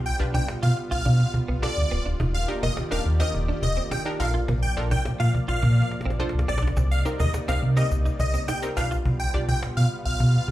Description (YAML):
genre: dance-pop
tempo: 105 BPM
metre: 4/4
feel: straight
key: unclear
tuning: A4 = 440 Hz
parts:
  - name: wide unison pluck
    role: accompaniment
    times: 0.0-10.0 s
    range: C4 to D5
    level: -32 LUFS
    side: right 1 dB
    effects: slapback echo
  - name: warm analog pad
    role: sustained chords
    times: 0.0-10.5 s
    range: C3 to D5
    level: -34 LUFS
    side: equal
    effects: chorus
  - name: sub bass with octave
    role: bass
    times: 0.0-10.4 s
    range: Db1 to C3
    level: -23 LUFS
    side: equal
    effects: none
  - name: supersaw chords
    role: melody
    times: 0.1-10.5 s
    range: D5 to G5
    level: -30 LUFS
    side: equal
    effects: slapback echo, ping-pong delay
  - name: direct-recorded clean electric guitar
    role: riff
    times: 0.2-9.0 s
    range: Bb3 to F4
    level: -34 LUFS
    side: right 4 dB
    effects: ensemble chorus, slapback echo
  - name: cajon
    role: drums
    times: 0.2-10.5 s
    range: none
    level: -28 LUFS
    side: equal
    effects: slapback echo
  - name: tube shaker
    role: percussion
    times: 6.8-9.0 s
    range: none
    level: -46 LUFS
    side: left 4 dB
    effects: none
room: little or no reverb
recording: live gig heard through the venue's PA, club reverb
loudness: -22 LUFS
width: side -14 dB against mid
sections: 0.0-10.5 A section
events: drum fill 5.6-6.8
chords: 0.0 G7/B; 2.2 Ebmaj7; 4.2 Bbmaj7; 6.8 Cm7; 8.8 G7/B